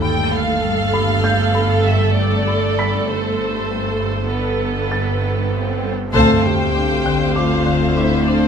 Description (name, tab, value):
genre	cinematic, suspense film score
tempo	98 BPM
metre	5/4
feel	straight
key	unclear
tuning	A4 = 441 Hz
part	rich studio violin section	melody	0.0-8.5 s	B4 to G5	-24 LUFS	left 1 dB	none
part	rich studio viola section	accompaniment	0.0-8.5 s	A3 to C5	-21 LUFS	right 2 dB	none
part	marimba with hard mallets	riff	0.0-8.5 s	G2 to D4	-24 LUFS	left 7 dB	none
part	clear studio cello section	bass	0.0-8.5 s	D2 to G2	-23 LUFS	right 3 dB	none
part	rich studio double bass section	bass	0.0-8.5 s	G1 to D2	-26 LUFS	right 4 dB	none
part	bowed-like drone	drone	0.0-8.5 s	G1 to D2	-26 LUFS	right 1 dB	built-in reverb
part	warm concert grand piano	texture	0.0-8.5 s	B5 to B6	-31 LUFS	right 1 dB	none
part	swell and sub drop	sound effects	5.3-8.5 s	none	-27 LUFS	equal	none
part	rich studio violin section	second line	6.1-8.5 s	D5 to A5	-24 LUFS	left 2 dB	none
part	mellow French horn section	sustained chords	6.1-8.5 s	A3 to C4	-22 LUFS	left 7 dB	none
part	taiko ensemble	drums	6.1-7.3 s	none	-26 LUFS	right 1 dB	none
part	mellow clarinet	second line	6.2-8.5 s	D4 to A4	-22 LUFS	left 1 dB	none
room	light reverb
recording	close, detailed microphones, faint mains hum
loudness	-15 LUFS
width	side -7 dB against mid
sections	0.0-6.1 A section; 6.1-8.5 A section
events	swell 5.3-6.1; band accent 6.1-6.8; impact 6.1-8.5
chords	0.0 Gadd9; 6.1 Dm7